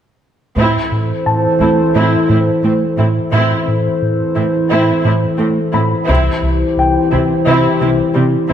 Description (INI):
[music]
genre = cinematic, hybrid orchestral and electronic film score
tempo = 87 BPM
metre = 4/4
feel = straight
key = A minor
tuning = A4 = 439 Hz
[part]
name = warm symphonic viola section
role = accompaniment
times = 0.6-8.5 s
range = G3 to E4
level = -18 LUFS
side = right 1 dB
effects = none
[part]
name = dark analog pad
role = sustained chords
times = 0.6-8.5 s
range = E3 to C5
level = -15 LUFS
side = left 1 dB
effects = lush chorus
[part]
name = smooth synth bass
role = riff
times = 0.6-8.5 s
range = C2 to A3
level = -18 LUFS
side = right 1 dB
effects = none
[part]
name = rich symphonic cello section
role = bass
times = 0.6-8.5 s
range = A2 to C3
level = -21 LUFS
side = right 3 dB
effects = none
[part]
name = taiko ensemble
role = drums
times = 0.6-1.9, 6.1-7.4 s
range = none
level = -23 LUFS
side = left 1 dB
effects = none
[part]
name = bright baby grand piano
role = texture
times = 1.3-8.5 s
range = G5 to B5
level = -22 LUFS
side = left 2 dB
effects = ping-pong delay
[sound]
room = moderate scoring stage reverb, RT60 1.7 s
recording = none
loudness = -12 LUFS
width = side -9 dB against mid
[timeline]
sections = 0.6-8.5 A section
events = build-up 0.6-8.5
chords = 0.6 Am; 6.1 C